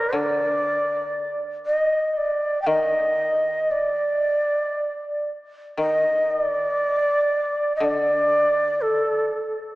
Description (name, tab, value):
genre	japanese traditional, Japanese chamber music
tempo	59 BPM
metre	4/4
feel	rubato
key	unclear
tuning	A4 = 440 Hz
part	mellow shakuhachi	melody	0.0-9.6 s	A4 to G5	-20 LUFS	equal	none
part	koto	accompaniment	0.0-9.8 s	D3 to Eb3	-29 LUFS	left 2 dB	none
room	wet church reverb, RT60 2.9 s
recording	recorded in a church or concert hall, small speaker sound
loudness	-20 LUFS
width	side -19 dB against mid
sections	0.0-9.8 A section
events	none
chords	none